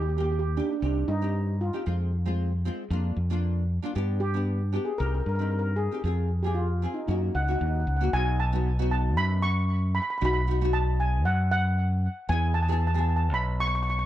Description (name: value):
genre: calypso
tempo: 115 BPM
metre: 4/4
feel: straight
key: unclear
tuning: A4 = 441 Hz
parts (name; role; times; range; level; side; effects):
- steel pan; melody; 0.0-14.1 s; D4 to C#6; -30 LUFS; right 2 dB; digital delay
- fingered electric bass; bass; 0.0-14.1 s; B1 to G2; -25 LUFS; equal; none
- nylon-string guitar; accompaniment; 0.2-13.6 s; Ab3 to Ab4; -32 LUFS; left 1 dB; double-tracked left and right
room: light reverb, studio ambience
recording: dark, warm production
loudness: -24 LUFS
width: side -13 dB against mid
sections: 0.0-8.1 A section; 8.1-14.1 B section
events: none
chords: 0.0 Eb; 0.8 Cm; 1.9 Fm; 2.9 Bb/F; 4.0 G; 5.0 Cm; 6.0 Fm; 7.1 Gb; 8.1 B; 12.3 E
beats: 0.30 0.82 1.34 | 1.86 2.38 2.91 3.43 | 3.95 4.47 4.99 5.52 | 6.04 6.56 7.08 7.60 | 8.13 8.65 9.17 9.69 | 10.21 10.73 11.25 11.77 | 12.29 12.82 13.34 13.86